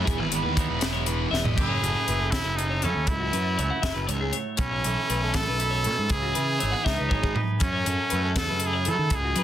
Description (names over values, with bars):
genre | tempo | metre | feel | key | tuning
math rock and midwest emo | 80 BPM (dotted quarters) | 6/8 | straight | unclear | A4 = 435 Hz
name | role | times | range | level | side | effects
twangy electric guitar | accompaniment | 0.0-9.4 s | E2 to G#4 | -32 LUFS | right 10 dB | none
clean electric guitar | arpeggios | 0.0-9.4 s | F#4 to F#5 | -32 LUFS | left 4 dB | none
biting overdriven guitar | riff | 0.0-1.6 s | E3 to E4 | -30 LUFS | left 1 dB | none
fuzz picked electric bass | bass | 0.0-9.4 s | E1 to F#3 | -28 LUFS | equal | overdrive
crisp fusion drum kit | drums | 0.1-9.4 s | crash cymbal, hi-hat, kick drum, snare drum, toms | -28 LUFS | equal | none
brilliant trumpet | melody | 1.6-9.4 s | C#4 to A4 | -28 LUFS | equal | slapback echo
room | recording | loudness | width
little or no reverb | dense, heavily limited modern master | -23 LUFS | side -11 dB against mid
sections
0.0-1.6 A section; 1.6-9.4 B section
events
drum fill 1.3, 6.9-7.6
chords
0.1 Emaj7; 1.6 F#m9; 4.6 B9sus4; 6.1 C#m9; 7.6 F#m9